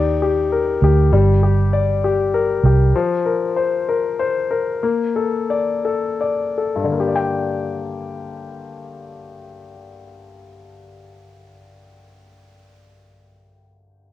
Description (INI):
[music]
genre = pop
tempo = 51-66 BPM (dotted quarters)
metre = 6/8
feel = straight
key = G minor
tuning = A4 = 439 Hz
[part]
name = clear concert grand piano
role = accompaniment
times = 0.0-14.1 s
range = G2 to G5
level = -20 LUFS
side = left 5 dB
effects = none
[part]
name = vintage muted fingered electric bass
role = bass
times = 0.0-2.9 s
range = G1 to Eb2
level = -16 LUFS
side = right 2 dB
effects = none
[sound]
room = light reverb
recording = home recording on cassette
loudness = -16 LUFS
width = side -13 dB against mid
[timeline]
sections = 0.0-7.0 A section; 7.0-11.7 B section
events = slowing down 2.9-7.0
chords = 0.0 Ebmaj7; 1.1 Gm; 2.9 Fsus4; 4.8 Bbmaj7; 7.0 Gm